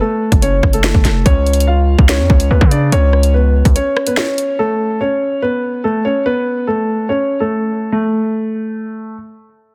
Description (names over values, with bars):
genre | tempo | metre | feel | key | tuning
hip hop, drill | 144 BPM | 4/4 | half-time | unclear | A4 = 440 Hz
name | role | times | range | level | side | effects
dark concert grand piano | melody | 0.0-9.1 s | A3 to E#5 | -18 LUFS | equal | tape echo
distorted 808-style bass | bass | 0.3-3.8 s | E#1 to C#3 | -15 LUFS | equal | distortion
drill drum kit | drums | 0.3-4.5 s | hi-hat, kick drum, rim click, snare drum | -16 LUFS | equal | none
room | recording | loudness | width
light reverb | dense, heavily limited modern master, low-pass filter | -14 LUFS | mono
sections
0.0-4.6 A section; 4.6-7.9 B section; 7.9-9.7 C section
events
break 3.8-4.6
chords
0.0 F#m; 1.3 C#; 4.6 Aadd9; 7.9 N.C.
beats
0.01 0.42 0.84 | 1.26 1.67 2.09 2.51 | 2.92 3.34 3.76 4.17 | 4.59 5.01 5.42 5.84 | 6.26 6.67 7.09 7.51 | 7.92 8.34 8.76